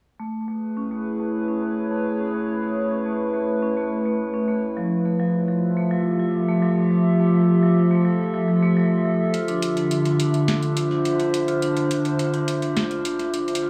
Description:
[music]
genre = IDM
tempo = 105 BPM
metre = 4/4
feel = straight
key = unclear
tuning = A4 = 440 Hz
[part]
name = warbly tape-like pad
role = sustained chords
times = 0.6-13.7 s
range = D3 to E5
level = -25 LUFS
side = equal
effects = chorus, built-in reverb
[part]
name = vibraphone with medium hard mallets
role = arpeggios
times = 0.2-13.7 s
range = F3 to F4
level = -25 LUFS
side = equal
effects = low-pass filter, tape echo
[part]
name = booming analog drum machine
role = drums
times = 9.3-13.7 s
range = hi-hat, snare drum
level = -31 LUFS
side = equal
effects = low-pass filter on hats, low-pass filter on snare
[sound]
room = moderate plate reverb, RT60 1.4 s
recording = small room ambience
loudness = -22 LUFS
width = mono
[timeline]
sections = 0.2-13.7 A section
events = filter sweep on vibraphone 0.2-13.7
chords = 0.2 Amaj7; 4.8 Fmaj7; 9.3 Dm7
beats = | 0.20 0.77 1.34 1.91 | 2.48 3.05 3.62 4.20 | 4.77 5.34 5.91 6.48 | 7.05 7.62 8.20 8.77 | 9.34 9.91 10.48 11.05 | 11.62 12.20 12.77 13.34

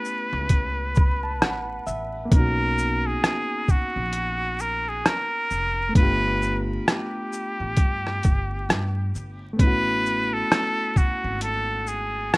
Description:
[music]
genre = lo-fi hip hop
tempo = 66 BPM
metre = 4/4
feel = swing 60% on 16ths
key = unclear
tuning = A4 = 438 Hz
[part]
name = trumpet with straight mute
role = melody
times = 0.0-12.4 s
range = F#4 to B4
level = -26 LUFS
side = equal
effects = low-pass filter, tape echo
[part]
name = barky reed electric piano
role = accompaniment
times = 0.0-12.4 s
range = A3 to B5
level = -30 LUFS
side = equal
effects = cassette tape, low-pass filter
[part]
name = boom bap sampler-style drum kit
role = drums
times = 0.0-12.4 s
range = hi-hat, kick drum, rim click, shaker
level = -20 LUFS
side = equal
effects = none
[part]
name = upright bass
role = bass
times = 0.3-12.3 s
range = E#1 to G2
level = -29 LUFS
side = equal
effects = none
[sound]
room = light reverb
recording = rough home demo mix, vinyl crackle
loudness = -21 LUFS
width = side -24 dB against mid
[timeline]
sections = 0.0-12.4 A section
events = reed electric piano fill 0.5-2.3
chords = 0.0 A9; 2.3 Bmaj9; 6.0 G9; 9.6 A69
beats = 0.50 1.41 | 2.31 3.23 4.13 5.04 | 5.95 6.86 7.77 8.68 | 9.59 10.50 11.41 12.31

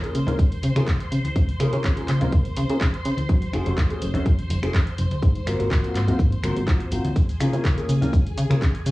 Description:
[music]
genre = filtered disco house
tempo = 124 BPM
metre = 4/4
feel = straight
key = Db major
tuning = A4 = 438 Hz
[part]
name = dark baby grand piano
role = accompaniment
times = 0.0-8.6 s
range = A3 to Db5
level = -28 LUFS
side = left 1 dB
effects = phaser, sidechain pumping, low-pass filter, cassette tape
[part]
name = phased string machine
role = sustained chords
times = 0.0-8.9 s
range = Ab4 to C6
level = -35 LUFS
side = equal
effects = ensemble chorus, phaser, sidechain pumping, low-pass filter, cassette tape
[part]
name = punchy analog drum machine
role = drums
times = 0.0-8.9 s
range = finger snaps, handclaps, hi-hat, shaker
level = -33 LUFS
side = equal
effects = sidechain pumping on hats, cassette tape, sidechain pumping on perc
[part]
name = maracas and congas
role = percussion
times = 0.0-8.9 s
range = none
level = -30 LUFS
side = left 1 dB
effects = sidechain pumping on perc, low-pass filter on perc
[part]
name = plucky analog bass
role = bass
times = 0.1-8.9 s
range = Gb1 to Db3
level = -23 LUFS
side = equal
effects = sidechain pumping, low-pass filter
[part]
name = electronic kick drum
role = drums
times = 0.4-8.7 s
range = none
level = -21 LUFS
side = equal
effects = cassette tape
[sound]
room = little or no reverb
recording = home recording on cassette, small room ambience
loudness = -20 LUFS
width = side -19 dB against mid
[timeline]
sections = 0.0-8.9 A section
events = filter sweep 0.0-8.9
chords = 0.0 Db6; 3.3 Gbmadd9; 5.2 Ab13; 7.2 Db6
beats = 0.39 0.88 | 1.36 1.84 2.33 2.81 | 3.29 3.78 4.26 4.75 | 5.23 5.71 6.20 6.68 | 7.17 7.65 8.13 8.62

